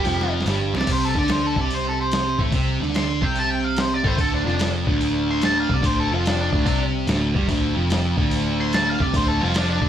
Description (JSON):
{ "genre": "blues rock power trio and southern rock", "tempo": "145 BPM", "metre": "4/4", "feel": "swing 67% on 8ths", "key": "unclear", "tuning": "A4 = 440 Hz", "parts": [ { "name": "octave-fuzz lead guitar", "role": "melody", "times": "0.0-9.9 s", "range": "D4 to C6", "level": "-25 LUFS", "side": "left 1 dB", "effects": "distortion" }, { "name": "sludgy distorted guitar", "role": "riff", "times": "0.0-9.9 s", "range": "D2 to D4", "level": "-22 LUFS", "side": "right 1 dB", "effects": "overdrive" }, { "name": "vintage muted picked electric bass", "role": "bass", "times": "0.0-9.9 s", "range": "D1 to D2", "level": "-26 LUFS", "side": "equal", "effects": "none" }, { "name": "lo-fi sampler-style drum kit", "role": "drums", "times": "0.0-9.9 s", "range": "crash cymbal, hi-hat, kick drum, snare drum", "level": "-25 LUFS", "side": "equal", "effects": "overdrive" } ], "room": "moderate large studio reverb, RT60 1.1 s", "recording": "none", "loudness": "-19 LUFS", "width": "side -10 dB against mid", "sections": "0.0-9.9 A section", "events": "lead electric guitar solo 0.0-9.9; drum fill 0.1-0.9", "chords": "0.0 G5; 0.9 Amadd11; 4.2 Dm7" }